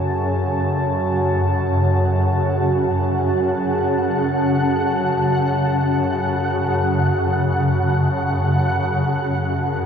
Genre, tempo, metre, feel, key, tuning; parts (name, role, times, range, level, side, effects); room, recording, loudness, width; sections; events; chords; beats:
dark ambient drone; free time; F# minor; A4 = 441 Hz
deep dark ambient pad; sustained chords; 0.0-9.9 s; F#4 to A5; -23 LUFS; right 1 dB; chorus, built-in reverb, shimmer reverb
swarming drone; drone; 0.0-9.9 s; F#2 to C#3; -19 LUFS; equal; built-in reverb, phaser
flickering grainy texture; texture; 1.1-9.9 s; F#5; -26 LUFS; right 1 dB; built-in reverb, shimmer reverb
wet cathedral reverb, RT60 5.9 s; faint mains hum; -17 LUFS; side -7 dB against mid
0.0-9.9 A section
filter sweep on synth drone 0.0-9.9
0.0 F#m
free time